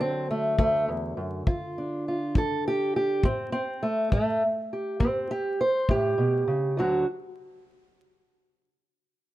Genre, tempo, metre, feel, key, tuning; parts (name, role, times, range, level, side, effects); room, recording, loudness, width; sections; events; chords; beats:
acoustic country blues, solo or duo; 68 BPM (dotted quarters); 12/8; straight; D mixolydian; A4 = 440 Hz
fingerpicked old ladder-braced acoustic guitar; melody; 0.0-7.1 s; D2 to C5; -25 LUFS; right 1 dB; plate reverb
kick drum; drums; 0.6-6.0 s; -25 LUFS; left 1 dB
light reverb; dark, warm production, vinyl crackle; -24 LUFS; side -15 dB against mid
0.0-6.8 A section; 6.8-9.3 B section
steel-string acoustic guitar solo 0.0-6.8
0.0 D; 1.5 G5; 3.2 A7(no3); 6.8 D
0.59 1.48 2.36 | 3.24 4.13 5.01 5.89 | 6.77